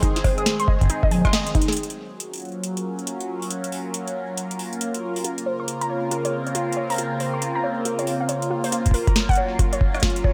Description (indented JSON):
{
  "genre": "IDM",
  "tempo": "138 BPM",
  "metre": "4/4",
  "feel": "swing 62% on 16ths",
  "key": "Gb lydian",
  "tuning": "A4 = 440 Hz",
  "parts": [
    { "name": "phased analog pad", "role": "sustained chords", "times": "0.0-10.3 s", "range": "Db3 to C5", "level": "-29 LUFS", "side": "equal", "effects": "phaser, chorus" },
    { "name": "warbly dusty pluck", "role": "arpeggios", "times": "0.0-1.8, 5.2-10.3 s", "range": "Eb4 to Eb6", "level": "-29 LUFS", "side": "equal", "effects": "chorus, phaser, cassette tape, dub echo" },
    { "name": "booming analog drum machine", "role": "drums", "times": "0.0-10.2 s", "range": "congas, hi-hat, rim click, snare drum", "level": "-28 LUFS", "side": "equal", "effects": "overdrive" },
    { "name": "electronic kick drum", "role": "drums", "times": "0.0-1.7, 8.9-10.3 s", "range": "none", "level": "-22 LUFS", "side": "equal", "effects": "overdrive" }
  ],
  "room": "light reverb",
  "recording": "none",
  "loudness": "-23 LUFS",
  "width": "mono",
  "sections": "0.0-1.8 A section; 1.8-8.7 B section; 8.7-10.3 C section",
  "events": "band accent 1.3; drum fill 1.5",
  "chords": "0.0 Ab; 1.8 Gbmaj7; 5.2 Bbmadd9; 8.7 Gbmaj7"
}